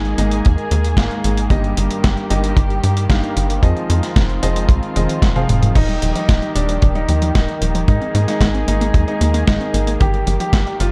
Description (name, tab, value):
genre	italo disco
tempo	113 BPM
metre	4/4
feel	straight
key	Eb major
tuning	A4 = 440 Hz
part	muted studio string section	sustained chords	0.0-10.9 s	Eb3 to Ab4	-27 LUFS	equal	vintage 12-bit sampler grit
part	warm grand piano	stabs	0.0-5.7 s	G2 to F5	-26 LUFS	equal	tape echo
part	tight sequencer bass	bass	0.0-10.9 s	Eb1 to Ab2	-21 LUFS	equal	none
part	dusty soul sampler-style drum kit	drums	0.1-10.9 s	crash cymbal, hi-hat, snare drum, toms	-25 LUFS	equal	overdrive
part	kick drum	drums	0.5-10.6 s	none	-17 LUFS	equal	none
part	clear grand piano	melody	5.8-10.9 s	D4 to G4	-25 LUFS	equal	delay
part	unison pluck	arpeggios	5.8-10.9 s	Eb3 to C4	-28 LUFS	equal	tape echo
room	light reverb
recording	dark, warm production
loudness	-17 LUFS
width	mono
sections	0.0-10.9 A section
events	drum fill 5.0-5.8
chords	0.0 Absus2; 1.5 Eb/G; 3.6 Fm7; 5.8 Eb; 7.9 Absus2; 10.0 Eb/G